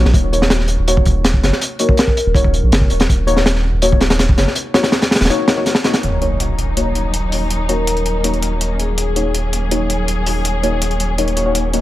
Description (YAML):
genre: drum and bass, jungle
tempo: 163 BPM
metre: 4/4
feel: straight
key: Eb minor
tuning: A4 = 441 Hz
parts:
  - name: deep mellow chord stab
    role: stabs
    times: 0.0-11.8 s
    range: Bb3 to Db5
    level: -21 LUFS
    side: left 2 dB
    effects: chorus, dub echo
  - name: saturated sub bass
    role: bass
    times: 0.0-11.8 s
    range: Eb1 to Bb1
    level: -18 LUFS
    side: equal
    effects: none
  - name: crunchy breakbeat drum kit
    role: drums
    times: 0.1-6.0 s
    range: hi-hat, kick drum, snare drum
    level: -14 LUFS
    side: equal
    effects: none
  - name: vibraphone with medium mallets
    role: melody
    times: 1.8-2.3, 7.7-9.3 s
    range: Ab4 to Bb4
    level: -24 LUFS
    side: left 3 dB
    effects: dub echo
  - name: muted studio string section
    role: sustained chords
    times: 6.0-11.8 s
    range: Gb3 to Ab4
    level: -23 LUFS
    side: left 1 dB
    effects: vintage 12-bit sampler grit
  - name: electronic hi-hat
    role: drums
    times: 6.0-11.8 s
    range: none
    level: -23 LUFS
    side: left 1 dB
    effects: high-pass filter on hats
  - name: impact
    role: sound effects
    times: 6.0-7.5 s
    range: none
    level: -25 LUFS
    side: equal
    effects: none
room: light reverb, studio ambience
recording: echo-heavy mix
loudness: -13 LUFS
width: side -15 dB against mid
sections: 0.0-6.0 A section; 6.0-11.8 B section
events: impact 6.0-7.5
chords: 0.0 Ebm7